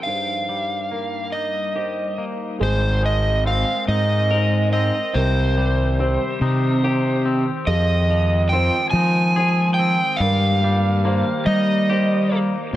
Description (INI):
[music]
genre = rock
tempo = 47 BPM (dotted quarters)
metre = 6/8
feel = straight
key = unclear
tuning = A4 = 440 Hz
[part]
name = overdriven slide guitar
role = melody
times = 0.0-12.4 s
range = C5 to Ab5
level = -22 LUFS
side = right 1 dB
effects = digital delay
[part]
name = warbly tape-like pad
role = sustained chords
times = 0.0-12.8 s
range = Eb3 to Bb4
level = -30 LUFS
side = right 1 dB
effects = chorus, built-in reverb
[part]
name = felt-muted upright piano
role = arpeggios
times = 0.0-12.8 s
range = Ab4 to C5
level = -31 LUFS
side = right 3 dB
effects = digital delay
[part]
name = twangy electric guitar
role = arpeggios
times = 0.0-12.8 s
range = G2 to Bb4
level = -28 LUFS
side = left 4 dB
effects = digital delay
[part]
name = fuzz fingered electric bass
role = bass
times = 2.6-12.8 s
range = Ab1 to G3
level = -19 LUFS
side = equal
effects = overdrive
[sound]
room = light reverb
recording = none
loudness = -17 LUFS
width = side -14 dB against mid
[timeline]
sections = 0.0-2.6 A section; 2.6-12.7 B section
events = none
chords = 0.1 Eb/G; 2.6 Abadd9; 5.1 Cm; 7.7 Fm7; 10.2 Eb